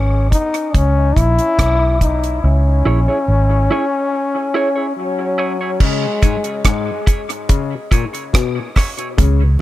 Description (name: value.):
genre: dub reggae.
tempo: 71 BPM.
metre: 4/4.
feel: straight.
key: C# dorian.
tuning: A4 = 440 Hz.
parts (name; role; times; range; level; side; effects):
warm trombone; melody; 0.0-6.7 s; F#3 to E4; -19 LUFS; left 2 dB; dub echo.
vintage muted fingered electric bass; bass; 0.0-3.7, 9.2-9.6 s; G#1 to C#2; -14 LUFS; equal; none.
deep reggae drum kit; drums; 0.3-9.4 s; crash cymbal, hi-hat, kick drum, rim click; -16 LUFS; equal; none.
mellow electric guitar; accompaniment; 2.9-9.1 s; E4 to C#5; -24 LUFS; right 4 dB; high-pass filter, dub echo.
overdriven clav; riff; 5.8-9.4 s; G#2 to C#3; -22 LUFS; left 8 dB; phaser, dub echo.
congas; percussion; 5.8-9.6 s; none; -29 LUFS; right 8 dB; none.
mellow tonewheel organ; accompaniment; 6.0-9.5 s; C#3 to C#4; -28 LUFS; left 1 dB; none.
room: light reverb, small room ambience.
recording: echo-heavy mix.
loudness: -14 LUFS.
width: side -15 dB against mid.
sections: 0.0-5.8 A section; 5.8-9.6 B section.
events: break 0.0-2.4, 4.1-5.8; part muted 2.4-5.8; filter sweep 2.4-9.2.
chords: 0.0 C#m.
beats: 0.74 1.59 | 2.43 3.27 4.12 4.96 | 5.81 6.65 7.49 8.34 | 9.18.